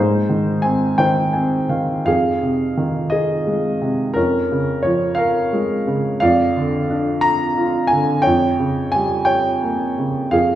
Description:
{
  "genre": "classical, lyrical solo piano",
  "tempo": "58 BPM (dotted quarters)",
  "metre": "6/8",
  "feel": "rubato",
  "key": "unclear",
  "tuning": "A4 = 440 Hz",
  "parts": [
    { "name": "warm grand piano", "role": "solo", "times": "0.0-10.6 s", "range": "F2 to Bb5", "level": "-16 LUFS", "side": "equal", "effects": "none" }
  ],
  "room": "wet recital hall reverb, RT60 1.3 s",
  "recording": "recorded in a church or concert hall",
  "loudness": "-16 LUFS",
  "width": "side -12 dB against mid",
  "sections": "0.0-2.1 A section; 2.1-10.6 B section",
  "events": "grand piano fill 1.0-2.1",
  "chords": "0.0 Ab; 2.1 Fm7; 4.2 Db6/F; 6.2 Bb/F; 8.2 Bbm6/F"
}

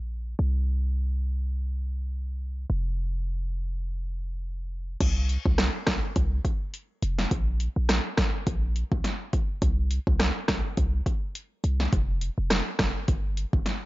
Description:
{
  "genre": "dancehall",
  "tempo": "104 BPM",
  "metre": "4/4",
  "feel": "swing 56% on 16ths",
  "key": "unclear",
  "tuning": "A4 = 438 Hz",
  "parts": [
    { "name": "warm 808-style bass", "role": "bass", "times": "0.0-13.6 s", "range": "F1 to C2", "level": "-27 LUFS", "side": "equal", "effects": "none" },
    { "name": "deep house drum kit", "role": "drums", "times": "5.0-13.8 s", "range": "crash cymbal, hi-hat, kick drum, rim click, snare drum", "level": "-26 LUFS", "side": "equal", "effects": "overdrive" }
  ],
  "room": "little or no reverb",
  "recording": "nothing above 7.5 kHz",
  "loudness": "-25 LUFS",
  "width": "side -18 dB against mid",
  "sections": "0.0-5.0 A section; 5.0-13.9 B section",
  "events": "none",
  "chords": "none"
}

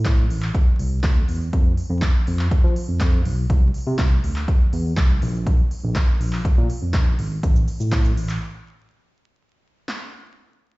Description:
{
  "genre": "dance-pop",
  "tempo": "122 BPM",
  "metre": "4/4",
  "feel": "straight",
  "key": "unclear",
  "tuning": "A4 = 440 Hz",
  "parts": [
    { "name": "tine electric piano", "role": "bass", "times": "0.0-8.4 s", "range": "Ab1 to F3", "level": "-22 LUFS", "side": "equal", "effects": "medium stereo tremolo, sidechain pumping" },
    { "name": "deep house drum kit", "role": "drums", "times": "0.0-10.0 s", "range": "handclaps, hi-hat, kick drum, shaker, snare drum", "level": "-19 LUFS", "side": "equal", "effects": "none" }
  ],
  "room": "little or no reverb",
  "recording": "played on a big sound system in a bare room, stone room reverb, vinyl crackle, nothing above 7.8 kHz",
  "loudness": "-18 LUFS",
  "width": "side -21 dB against mid",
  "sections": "0.0-9.4 A section; 9.4-10.8 B section",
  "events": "break 8.4-9.4",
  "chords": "none"
}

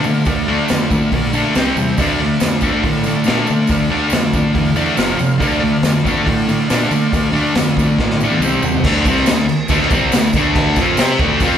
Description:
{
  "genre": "garage rock duo or trio",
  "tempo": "140 BPM",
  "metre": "4/4",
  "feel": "straight",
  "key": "D minor",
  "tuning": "A4 = 444 Hz",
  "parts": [
    { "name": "thick fuzz guitar", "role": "riff", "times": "0.0-11.6 s", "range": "F2 to C5", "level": "-15 LUFS", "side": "equal", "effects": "distortion" },
    { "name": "tambourine", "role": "percussion", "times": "0.0-11.5 s", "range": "none", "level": "-34 LUFS", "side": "right 6 dB", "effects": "none" },
    { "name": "combo organ", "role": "sustained chords", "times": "0.1-8.8 s", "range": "F4 to G5", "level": "-26 LUFS", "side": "equal", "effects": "none" },
    { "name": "fuzz fingered electric bass", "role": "bass", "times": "0.1-11.6 s", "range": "F1 to D3", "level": "-23 LUFS", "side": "right 1 dB", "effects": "overdrive" },
    { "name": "raw garage drum kit", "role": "drums", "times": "0.3-11.6 s", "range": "crash cymbal, hi-hat, kick drum, snare drum, toms", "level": "-20 LUFS", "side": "equal", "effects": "none" }
  ],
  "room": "moderate large studio reverb, RT60 1.3 s",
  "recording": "band playing live in one room",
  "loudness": "-13 LUFS",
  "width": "side -9 dB against mid",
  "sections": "0.0-8.8 A section; 8.8-11.6 B section",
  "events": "drum fill 8.0-8.8",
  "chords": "0.0 Dm; 1.6 C5; 2.0 Dm; 5.0 F5; 5.4 Dm; 8.4 C5; 8.8 Dm"
}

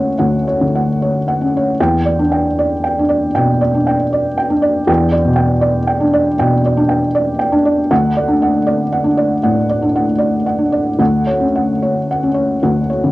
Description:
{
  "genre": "neoclassical minimalist piano",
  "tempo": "78 BPM",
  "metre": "4/4",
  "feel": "uneven beats, rubato",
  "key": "E dorian",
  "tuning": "A4 = 440 Hz",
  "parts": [
    { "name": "felt-muted upright piano", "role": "solo", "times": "0.0-13.1 s", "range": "D2 to G5", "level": "-12 LUFS", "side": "equal", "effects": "none" }
  ],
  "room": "wet booth ambience, RT60 0.2 s",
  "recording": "home recording on cassette",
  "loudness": "-12 LUFS",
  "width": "side -18 dB against mid",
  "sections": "0.0-13.1 A section",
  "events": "none",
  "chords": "0.0 Dmaj7; 1.8 Em7; 7.9 D; 11.0 Dmaj7"
}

